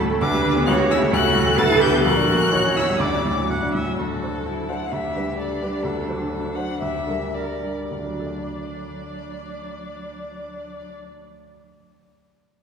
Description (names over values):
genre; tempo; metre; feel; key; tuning
quick classical-period movement for piano quartet; 103-133 BPM; 2/4; rubato; D major; A4 = 440 Hz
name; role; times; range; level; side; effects
clear baby grand piano; accompaniment; 0.0-11.8 s; A1 to D5; -23 LUFS; equal; none
rich viola; accompaniment; 0.0-10.9 s; D4 to F#5; -28 LUFS; right 2 dB; none
rich violin; melody; 0.2-10.9 s; A4 to A6; -27 LUFS; left 4 dB; none
rich cello; second line; 0.2-10.9 s; F#3 to Bb4; -26 LUFS; right 2 dB; none
room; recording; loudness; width
wet concert hall reverb, RT60 2.5 s; heard from further back in the room; -19 LUFS; side -6 dB against mid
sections
0.0-4.0 A section; 4.0-7.9 B section; 7.9-10.2 C section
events
slowing down 5.4-7.9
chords
0.2 G/D; 0.7 A7/C#; 1.1 D; 1.6 Em7/D; 2.1 Bbaug; 2.5 A7; 3.0 D; 4.0 D7; 4.9 G/D; 5.8 D7; 6.8 Gm/D; 7.9 D